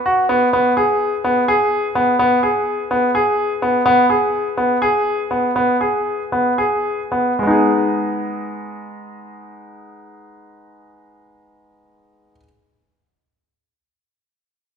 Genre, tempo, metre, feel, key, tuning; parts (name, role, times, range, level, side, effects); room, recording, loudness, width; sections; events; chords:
contemporary instrumental, contemporary; 217-252 BPM (eighths); 7/8; straight; G# minor; A4 = 440 Hz
bright concert grand piano; solo; 0.1-12.4 s; G#3 to G#4; -15 LUFS; equal
wet scoring stage reverb, RT60 1.8 s; recorded in a church or concert hall; -15 LUFS; side -7 dB against mid
0.5-7.4 A section; 7.4-11.3 B section
slowing down 3.9-7.4
0.0 B5; 0.5 G#m/B; 7.4 G#m